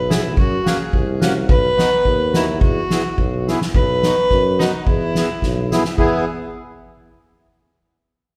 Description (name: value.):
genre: alpine folk, alpine dance band.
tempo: 107 BPM.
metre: 2/4.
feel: straight.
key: E major.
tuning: A4 = 442 Hz.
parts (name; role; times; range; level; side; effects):
dark fiddle; melody; 0.0-6.3 s; D#4 to B4; -23 LUFS; equal; none.
warm tuba; bass; 0.0-6.3 s; B1 to F#2; -25 LUFS; equal; none.
accordion; accompaniment; 0.1-6.3 s; A#3 to G#4; -26 LUFS; equal; none.
soft-mallet drum kit; drums; 0.1-6.1 s; crash cymbal, hi-hat, kick drum, snare drum; -22 LUFS; equal; none.
room: moderate recital hall reverb, RT60 1.7 s.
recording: recorded in a church or concert hall.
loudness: -17 LUFS.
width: mono.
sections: 0.0-3.7 A section; 3.7-6.0 B section; 6.0-7.1 C section.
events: drum fill 3.5, 5.4-6.0.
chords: 0.4 F#; 1.5 B; 2.6 Eadd9; 3.7 B; 4.9 E.